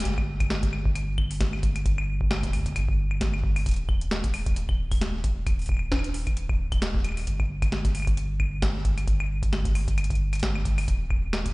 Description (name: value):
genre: IDM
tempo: 133 BPM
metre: 4/4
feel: swing 56% on 16ths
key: unclear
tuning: A4 = 440 Hz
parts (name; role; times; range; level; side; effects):
- round analog bass; bass; 0.0-11.5 s; Eb1 to G1; -27 LUFS; equal; none
- booming analog drum machine; drums; 0.0-11.5 s; claves, hi-hat, snare drum; -32 LUFS; equal; overdrive, digital delay
- electronic kick drum; drums; 0.2-11.5 s; none; -27 LUFS; equal; overdrive
room: light reverb, digital ambience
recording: played on a big sound system in a bare room, large studio reverb, nothing above 10.8 kHz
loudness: -24 LUFS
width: side -23 dB against mid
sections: 0.1-11.5 A section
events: none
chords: none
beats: | 0.05 0.50 0.95 1.41 | 1.86 2.31 2.76 3.21 | 3.66 4.11 4.56 5.01 | 5.47 5.92 6.37 6.82 | 7.27 7.72 8.17 8.62 | 9.07 9.53 9.98 10.43 | 10.88 11.33